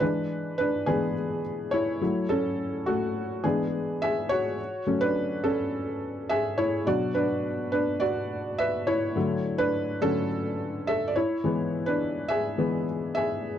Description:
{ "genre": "pop", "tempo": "105 BPM", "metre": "4/4", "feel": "straight", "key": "unclear", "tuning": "A4 = 440 Hz", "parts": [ { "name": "felt-muted upright piano", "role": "solo", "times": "0.0-13.6 s", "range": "B2 to E5", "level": "-25 LUFS", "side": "equal", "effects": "none" } ], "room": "light reverb", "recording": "dry, close 1970s-style studio recording", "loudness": "-25 LUFS", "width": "side -10 dB against mid", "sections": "0.0-4.6 A section; 4.6-13.6 B section", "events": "felt piano solo 0.0-4.6, 4.6-13.6", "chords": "0.0 E7; 2.0 F#m7; 3.4 E7; 4.6 F#madd9; 6.9 Bm; 9.2 Dadd9; 11.2 E" }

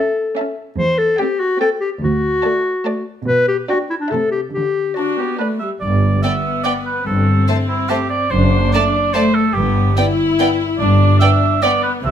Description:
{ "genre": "cinematic, playful, whimsical film cue", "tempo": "144 BPM", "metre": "3/4", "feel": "straight", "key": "G major", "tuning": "A4 = 440 Hz", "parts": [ { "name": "warm chamber violin section", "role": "melody", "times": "0.0-11.7 s", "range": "G5 to A5", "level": "-26 LUFS", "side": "right 2 dB", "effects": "none" }, { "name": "clear clarinet", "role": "second line", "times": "0.0-5.4 s", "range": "D4 to C5", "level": "-17 LUFS", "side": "left 2 dB", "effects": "none" }, { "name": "warm chamber violin section", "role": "second line", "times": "0.0-11.7 s", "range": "A3 to G5", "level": "-23 LUFS", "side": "right 1 dB", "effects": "none" }, { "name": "warm chamber viola section", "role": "accompaniment", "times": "0.0-12.1 s", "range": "G3 to E4", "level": "-21 LUFS", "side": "left 3 dB", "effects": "none" }, { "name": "dark chamber cello section", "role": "bass", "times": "0.8-12.1 s", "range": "D2 to D3", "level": "-20 LUFS", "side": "equal", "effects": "none" }, { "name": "warm oboe", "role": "second line", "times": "5.2-12.1 s", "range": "E4 to E5", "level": "-19 LUFS", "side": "right 4 dB", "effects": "none" }, { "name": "clear chamber double bass section", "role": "bass", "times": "5.8-12.1 s", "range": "F#1 to C2", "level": "-19 LUFS", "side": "right 1 dB", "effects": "none" } ], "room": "moderate stone room reverb, RT60 1.0 s", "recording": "none", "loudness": "-14 LUFS", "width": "side -9 dB against mid", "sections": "0.0-5.8 A section; 5.8-12.1 B section", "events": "none", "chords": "0.0 A/C#; 0.8 C/E; 2.0 D; 3.3 G/B; 4.1 Am7/C; 4.5 D; 5.8 G; 7.1 Am7/G; 8.3 D7/F#; 9.6 G" }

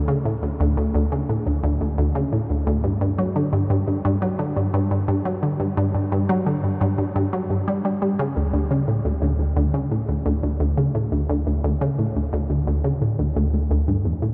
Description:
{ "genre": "ambient", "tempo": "87 BPM", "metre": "4/4", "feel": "straight", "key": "D major", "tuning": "A4 = 443 Hz", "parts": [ { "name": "resonant blip pluck", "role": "solo", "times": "0.1-14.3 s", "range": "D2 to G3", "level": "-22 LUFS", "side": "equal", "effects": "chorus, delay" } ], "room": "wet huge ambient reverb, RT60 7.5 s", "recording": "dark, warm production", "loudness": "-22 LUFS", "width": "mono", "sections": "0.0-8.4 A section; 8.4-14.3 B section", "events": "none", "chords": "none" }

